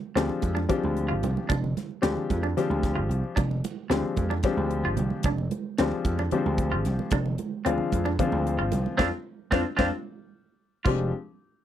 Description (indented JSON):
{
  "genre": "electric jazz fusion",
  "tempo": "224 BPM (eighths)",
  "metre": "7/8",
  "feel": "straight",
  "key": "F dorian",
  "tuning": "A4 = 436 Hz",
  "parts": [
    { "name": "warm concert grand piano", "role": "accompaniment", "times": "0.2-11.1 s", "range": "F3 to G4", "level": "-28 LUFS", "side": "left 5 dB", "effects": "none" },
    { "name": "semi-hollow electric guitar", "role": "stabs", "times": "0.2-11.0 s", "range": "C4 to F4", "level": "-31 LUFS", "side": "right 3 dB", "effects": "wide subtle chorus" },
    { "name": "vintage slap bass", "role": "bass", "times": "0.2-11.1 s", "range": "F1 to F2", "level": "-28 LUFS", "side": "right 1 dB", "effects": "none" },
    { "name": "crisp fusion drum kit", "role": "drums", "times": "0.2-11.0 s", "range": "crash cymbal, hi-hat, kick drum, snare drum", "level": "-28 LUFS", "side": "right 1 dB", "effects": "none" },
    { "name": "congas", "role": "percussion", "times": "0.2-11.1 s", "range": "none", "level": "-34 LUFS", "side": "right 8 dB", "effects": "none" }
  ],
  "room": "little or no reverb",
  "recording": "dry, close 1970s-style studio recording",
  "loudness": "-24 LUFS",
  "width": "side -11 dB against mid",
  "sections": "0.0-10.9 A section",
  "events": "band accent 9.0-10.9; drum fill 9.3-10.9",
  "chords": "0.0 Fm69"
}